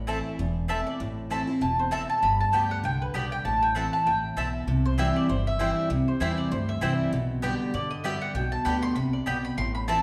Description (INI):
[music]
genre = bluegrass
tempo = 196 BPM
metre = 4/4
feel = swing 56% on 8ths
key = unclear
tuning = A4 = 440 Hz
[part]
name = picked steel-string acoustic guitar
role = accompaniment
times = 0.0-10.0 s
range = E2 to G4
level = -32 LUFS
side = equal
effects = none
[part]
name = upright bass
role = bass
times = 0.0-10.0 s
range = E1 to G2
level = -33 LUFS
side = equal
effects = none
[part]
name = mandolin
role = stabs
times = 0.1-10.0 s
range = B3 to A5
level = -36 LUFS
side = equal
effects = none
[part]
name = mandolin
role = melody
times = 0.7-10.0 s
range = B4 to C6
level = -30 LUFS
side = equal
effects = none
[sound]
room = wet recital hall reverb, RT60 1.4 s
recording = recorded in a church or concert hall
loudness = -27 LUFS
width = mono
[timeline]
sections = 0.0-4.7 A section; 4.7-10.0 B section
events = none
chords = 0.0 Am; 2.2 G; 3.5 Am; 4.7 C; 7.1 G/B